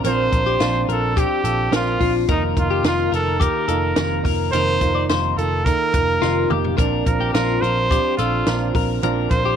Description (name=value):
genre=jangly indie pop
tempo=107 BPM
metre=4/4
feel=straight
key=F mixolydian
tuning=A4 = 440 Hz
part: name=fingerpicked plugged-in steel-string acoustic guitar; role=accompaniment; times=0.0-9.6 s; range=F2 to F4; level=-25 LUFS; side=right 11 dB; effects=none
part: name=twelve-string electric guitar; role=arpeggios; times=0.0-9.6 s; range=F4 to D5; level=-24 LUFS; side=left 15 dB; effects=slapback echo
part: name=vintage muted picked electric bass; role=bass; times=0.0-9.5 s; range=F1 to Bb1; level=-24 LUFS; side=equal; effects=none
part: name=compact cocktail drum kit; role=drums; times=0.0-9.4 s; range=hi-hat, kick drum, snare drum, toms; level=-23 LUFS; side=equal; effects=none
part: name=brilliant trumpet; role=melody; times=0.1-9.6 s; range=Eb4 to C5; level=-22 LUFS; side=right 2 dB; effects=slapback echo
room=light reverb, studio reverb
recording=1960s-style stereo with parts hard left and right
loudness=-17 LUFS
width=side -8 dB against mid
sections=0.0-9.6 A section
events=drum fill 6.2-6.8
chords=0.0 Bbadd9; 2.3 F7sus4; 6.8 Bbadd9